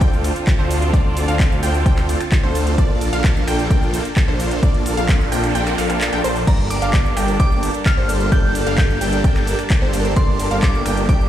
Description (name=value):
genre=EDM, festival progressive house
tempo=130 BPM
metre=4/4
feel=straight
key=G minor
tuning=A4 = 440 Hz
part: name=dark studio string section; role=sustained chords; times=0.0-11.3 s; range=D3 to A4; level=-28 LUFS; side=right 2 dB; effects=sidechain pumping
part: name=wide unison pluck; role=arpeggios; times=0.0-11.3 s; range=C5 to G5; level=-28 LUFS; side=right 1 dB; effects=sidechain pumping, ping-pong delay
part: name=big supersaw lead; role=riff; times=0.0-11.3 s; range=Bb3 to G5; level=-23 LUFS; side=equal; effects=phaser, sidechain pumping, ping-pong delay
part: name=wide detuned saw bass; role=bass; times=0.0-11.3 s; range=G1 to D2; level=-22 LUFS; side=equal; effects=chorus, sidechain pumping
part: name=electronic kick drum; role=drums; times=0.0-11.2 s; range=none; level=-15 LUFS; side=equal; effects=none
part: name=house drum kit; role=drums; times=0.0-11.3 s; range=crash cymbal, finger snaps, handclaps, hi-hat, ride cymbal, shaker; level=-27 LUFS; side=equal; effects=overdrive
part: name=noise sweep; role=sound effects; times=5.1-6.5 s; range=none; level=-32 LUFS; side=right 6 dB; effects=none
part: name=glassy synth bell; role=melody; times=6.5-11.3 s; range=Bb5 to G6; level=-26 LUFS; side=equal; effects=chorus, ping-pong delay
room=light reverb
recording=played on a big sound system in a bare room, stone room reverb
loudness=-15 LUFS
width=side -12 dB against mid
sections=0.0-11.3 A section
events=noise sweep 5.1-6.5; kick drops out 5.5-6.5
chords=0.0 Dm7; 2.8 Bbmaj7; 6.5 Gmadd9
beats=0.01 0.47 | 0.94 1.40 1.86 2.32 | 2.78 3.24 3.70 4.17 | 4.63 5.09 5.55 6.01 | 6.47 6.93 7.40 7.86 | 8.32 8.78 9.24 9.70 | 10.17 10.63 11.09